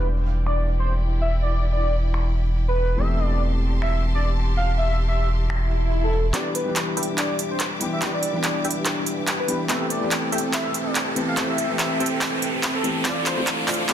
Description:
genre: future bass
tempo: 143 BPM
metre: 4/4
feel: swing 56% on 16ths, half-time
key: A minor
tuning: A4 = 441 Hz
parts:
  - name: warm velvety synth lead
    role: melody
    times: 0.0-13.9 s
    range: A4 to F5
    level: -28 LUFS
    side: equal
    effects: chorus, ping-pong delay
  - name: felt-muted upright piano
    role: accompaniment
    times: 0.0-13.9 s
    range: E3 to B4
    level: -29 LUFS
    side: left 2 dB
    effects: vintage 12-bit sampler grit
  - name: clear symphonic string section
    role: sustained chords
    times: 0.0-13.9 s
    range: E4 to D6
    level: -35 LUFS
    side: left 2 dB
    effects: low-pass filter
  - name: saturated sub bass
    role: bass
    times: 0.0-13.9 s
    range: D1 to E1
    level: -24 LUFS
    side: equal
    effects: high-pass filter
  - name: big-room dance drum kit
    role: drums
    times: 0.0-13.9 s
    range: finger snaps, handclaps, hi-hat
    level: -25 LUFS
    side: right 1 dB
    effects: overdrive, high-pass filter on hats, low-pass filter on hats, soft clipping on snare, high-pass filter on snare, low-pass filter on snare, high-pass filter on toms, low-pass filter on toms, high-pass filter on room, low-pass filter on room
  - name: swell and riser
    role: sound effects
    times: 5.6-13.9 s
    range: none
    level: -32 LUFS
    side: right 1 dB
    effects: none
  - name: supersaw stab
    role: riff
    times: 6.3-13.9 s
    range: C4 to G5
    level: -29 LUFS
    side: right 1 dB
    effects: cassette tape, low-pass filter, ping-pong delay
room: light reverb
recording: dense, heavily limited modern master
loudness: -20 LUFS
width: side -11 dB against mid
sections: 0.0-6.3 A section; 6.3-13.9 B section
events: filter sweep on string section 0.0-6.3; swell 5.6-6.3; build-up 6.3-13.9; drum fill 6.3-13.9; riser 6.3-13.9; filter sweep on supersaw synth 6.3-13.9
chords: 0.0 Em7; 3.0 Am7/E; 6.3 Em7; 9.7 Am7/E; 13.1 Dm7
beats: 0.04 0.47 0.88 | 1.30 1.72 2.14 2.56 | 2.98 3.40 3.82 4.24 | 4.66 5.08 5.50 5.92 | 6.34 6.76 7.18 7.60 | 8.02 8.44 8.86 9.28 | 9.70 10.12 10.54 10.95 | 11.37 11.79 12.21 12.63 | 13.05 13.47 13.89

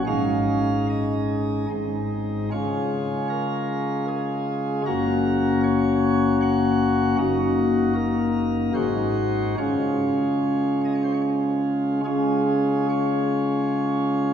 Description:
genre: classical, chorale-style piece for pipe organ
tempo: 75 BPM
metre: 3/4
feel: uneven beats, rubato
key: Db major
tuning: A4 = 443 Hz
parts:
  - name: pipe organ, sparkling flutes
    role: solo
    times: 0.0-14.3 s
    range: Gb1 to Gb5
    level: -20 LUFS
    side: left 1 dB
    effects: none
room: wet church reverb, RT60 2.7 s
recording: heard from further back in the room, small room ambience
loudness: -20 LUFS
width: side -8 dB against mid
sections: 0.0-12.0 A section; 12.0-14.3 A section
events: none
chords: 0.1 Absus4; 1.7 Ab; 2.5 Db; 4.9 Gb; 7.2 Ebm/Gb; 8.8 Ab7; 9.6 Db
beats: | 0.07 0.89 1.70 | 2.51 3.29 4.07 | 4.85 5.62 6.42 | 7.19 7.96 8.75 | 9.57 10.40 11.22 | 12.04 12.88 13.68

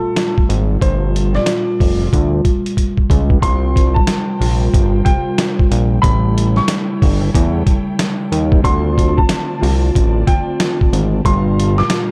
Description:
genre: hip hop, boom-bap hip-hop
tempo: 92 BPM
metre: 4/4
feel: swing 62% on 16ths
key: G minor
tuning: A4 = 444 Hz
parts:
  - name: clear upright piano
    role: melody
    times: 0.0-12.1 s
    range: A4 to D6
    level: -25 LUFS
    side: equal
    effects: high-pass filter, low-pass filter, analog delay
  - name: concert harp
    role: accompaniment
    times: 0.0-12.1 s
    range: Bb2 to F4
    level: -22 LUFS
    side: equal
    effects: cassette tape, high-pass filter, low-pass filter, analog delay
  - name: boom bap sampler-style drum kit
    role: drums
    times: 0.2-12.1 s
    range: hi-hat, kick drum, snare drum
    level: -18 LUFS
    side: equal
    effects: none
  - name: fat analog bass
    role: bass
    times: 0.5-11.8 s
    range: F1 to E2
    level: -18 LUFS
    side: equal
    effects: none
  - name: warm studio string section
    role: sustained chords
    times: 3.4-12.1 s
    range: E4 to Bb5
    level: -35 LUFS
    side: equal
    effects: high-pass filter, low-pass filter
room: little or no reverb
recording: echo-heavy mix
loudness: -15 LUFS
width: mono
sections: 0.0-3.4 A section; 3.4-12.1 B section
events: drum fill 2.8-3.4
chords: 0.0 Gm9; 3.4 C7sus4; 6.0 A7; 8.6 Dm7; 11.2 Gm9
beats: 0.16 | 0.81 1.47 2.12 2.77 | 3.42 4.08 4.73 5.38 | 6.03 6.68 7.34 7.99 | 8.64 9.29 9.95 10.60 | 11.25 11.90

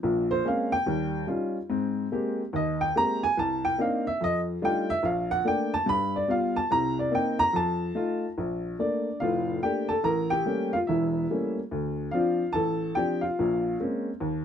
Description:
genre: solo jazz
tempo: 144 BPM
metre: 4/4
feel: swing 65% on 8ths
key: Bb major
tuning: A4 = 440 Hz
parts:
  - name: warm upright piano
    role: solo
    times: 0.0-14.4 s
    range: E1 to B5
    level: -24 LUFS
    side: equal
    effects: none
room: light reverb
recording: dark, warm production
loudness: -24 LUFS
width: side -8 dB against mid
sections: 0.0-8.4 A section; 8.4-14.4 B section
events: upright piano solo 0.0-8.4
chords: 0.0 Bbm9; 0.9 Eb9; 1.7 Abmaj9; 3.4 Cm9; 4.2 F13; 5.0 Bbmaj7; 5.9 G7; 6.7 Cm7; 7.5 F7; 8.4 Bbmaj7; 10.0 A7b9; 11.7 Dm7; 13.4 Bbm9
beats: | 0.03 0.45 0.86 1.28 | 1.70 2.12 2.53 2.95 | 3.37 3.78 4.20 4.62 | 5.04 5.45 5.87 6.29 | 6.70 7.12 7.54 7.95 | 8.37 8.79 9.20 9.62 | 10.04 10.46 10.87 11.29 | 11.71 12.12 12.54 12.96 | 13.38 13.79 14.21

